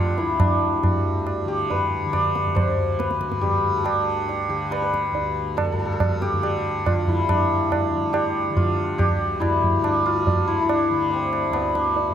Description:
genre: indian classical, Hindustani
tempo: 140 BPM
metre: 4/4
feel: straight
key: D raga bageshri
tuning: A4 = 444 Hz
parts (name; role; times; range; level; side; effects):
- santur; melody; 0.0-12.1 s; B3 to D5; -22 LUFS; left 1 dB; none
- tanpura; drone; 0.0-12.1 s; D2 to D3; -28 LUFS; left 2 dB; none
- tabla; percussion; 0.2-12.1 s; none; -24 LUFS; right 2 dB; none
room: moderate concert hall reverb, RT60 2.5 s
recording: none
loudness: -20 LUFS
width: side -9 dB against mid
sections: 0.0-7.3 A section; 7.3-12.1 B section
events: speeding up 0.0-12.1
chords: none

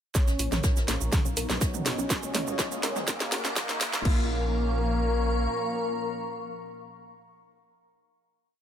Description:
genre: melodic techno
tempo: 123 BPM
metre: 4/4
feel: straight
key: Bb phrygian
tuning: A4 = 440 Hz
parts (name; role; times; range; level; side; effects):
- wide unison lead; melody; 0.1-7.1 s; Bb3 to Db4; -35 LUFS; left 1 dB; sidechain pumping, digital delay
- airy dreamy lead; second line; 0.1-7.1 s; Bb4 to Db5; -37 LUFS; left 2 dB; chorus, sidechain pumping, ping-pong delay
- sweeping resonant pad; sustained chords; 0.1-7.1 s; Bb2 to Gb4; -39 LUFS; right 2 dB; chorus, sidechain pumping
- wide unison pluck; arpeggios; 0.1-4.3 s; Bb3 to Bb4; -38 LUFS; equal; sidechain pumping, ping-pong delay
- electronic kick drum; drums; 0.1-4.2 s; none; -26 LUFS; equal; none
- house drum kit; drums; 0.1-4.2 s; crash cymbal, hi-hat, shaker, snare drum, toms; -29 LUFS; right 1 dB; none
- jazz brush drum kit; drums; 0.1-4.0 s; hi-hat, snare drum; -39 LUFS; left 2 dB; none
- riser; sound effects; 1.3-4.1 s; none; -39 LUFS; equal; none
- warbly tape-like pad; texture; 0.1-7.3 s; B3 to Db6; -37 LUFS; left 1 dB; chorus, built-in reverb, sidechain pumping
- tight sequencer bass; bass; 0.3-5.5 s; Eb1 to Eb2; -31 LUFS; equal; sidechain pumping
room: light reverb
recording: high-pass filter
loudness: -25 LUFS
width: side -9 dB against mid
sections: 0.1-4.1 build; 4.1-8.0 final chord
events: build-up 0.1-4.1; drum fill 0.1-4.1; filter sweep on synth pluck 0.1-4.1; filter sweep on analog synth lead 0.1-4.1; filter sweep on digital synth lead 0.1-4.1; filter sweep 0.1-4.1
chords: 0.1 Bbm; 1.1 B; 2.1 Db; 3.1 Ebm7; 4.1 Bbm

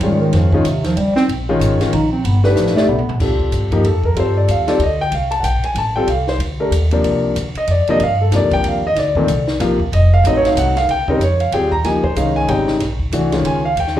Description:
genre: modal jazz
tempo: 188 BPM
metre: 3/4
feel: swing 61% on 8ths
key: C dorian from 3.2 s, Bb dorian from 10.9 s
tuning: A4 = 440 Hz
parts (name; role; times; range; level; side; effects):
- dark bass clarinet; second line; 0.0-3.1 s; Ab2 to Eb4; -18 LUFS; right 1 dB; slapback echo
- warm concert grand piano; accompaniment; 0.0-14.0 s; Bb2 to Bb5; -16 LUFS; left 1 dB; slapback echo
- upright bass; bass; 0.0-14.0 s; F1 to Ab2; -18 LUFS; equal; none
- compact cocktail drum kit; drums; 0.0-14.0 s; crash cymbal, hi-hat, kick drum, ride cymbal, snare drum, toms; -25 LUFS; equal; none
room: light reverb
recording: live gig heard through the venue's PA, club ambience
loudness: -14 LUFS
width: side -12 dB against mid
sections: 0.0-3.2 A section; 3.2-10.9 A section; 10.9-14.0 A section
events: bass clarinet solo 0.0-3.2; drum fill 2.6-3.2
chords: 0.0 Dbadd9(#11); 1.3 Ebsus4; 2.2 G; 3.2 Cm69; 7.0 Gm/C; 9.9 F7b9; 10.9 Bbm9; 12.8 Ebsus4/Bb

